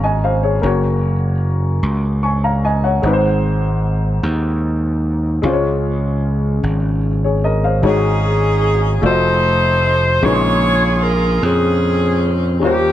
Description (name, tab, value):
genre	slow gospel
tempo	50 BPM (dotted quarters)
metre	6/8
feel	straight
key	Db major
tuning	A4 = 442 Hz
part	warm upright piano	accompaniment	0.0-12.9 s	Ab2 to Db6	-19 LUFS	left 2 dB	none
part	gritty slap bass	bass	0.0-12.9 s	F1 to F2	-17 LUFS	equal	overdrive
part	bright saxophone section	melody	7.9-12.9 s	Bb3 to Db5	-16 LUFS	equal	none
room	light reverb, studio ambience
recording	dark, warm production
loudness	-14 LUFS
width	side -12 dB against mid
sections	0.0-7.8 A section; 7.8-12.9 B section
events	none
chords	0.0 Db; 0.6 Gb; 3.0 Ab; 5.4 Db; 7.8 Ab7sus4; 9.0 F7b9; 10.2 Bbm11